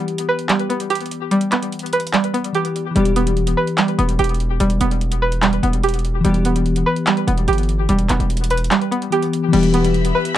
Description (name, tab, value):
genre	hip hop, trap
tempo	146 BPM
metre	4/4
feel	half-time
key	E minor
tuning	A4 = 440 Hz
part	glassy digital keys	accompaniment	0.0-10.4 s	E3 to G4	-22 LUFS	left 4 dB	chorus, low-pass filter
part	string-like resonator pluck	arpeggios	0.0-10.4 s	G3 to B4	-20 LUFS	right 2 dB	chorus, low-pass filter, ping-pong delay
part	trap drum kit	drums	0.1-10.4 s	crash cymbal, handclaps, hi-hat	-23 LUFS	equal	none
part	distorted 808-style bass	bass	3.0-10.1 s	E1 to G1	-19 LUFS	equal	distortion
part	warm studio string section	sustained chords	9.5-10.4 s	G4 to B5	-26 LUFS	left 4 dB	none
room	little or no reverb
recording	dark, warm production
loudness	-16 LUFS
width	side -12 dB against mid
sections	0.0-9.5 A section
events	break 0.0-3.0; kick muted 8.7-9.5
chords	0.0 Em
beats	0.08 0.49 0.90 | 1.31 1.73 2.14 2.55 | 2.96 3.37 3.78 4.19 | 4.60 5.01 5.42 5.83 | 6.25 6.66 7.07 7.48 | 7.89 8.30 8.71 9.12 | 9.53 9.94 10.36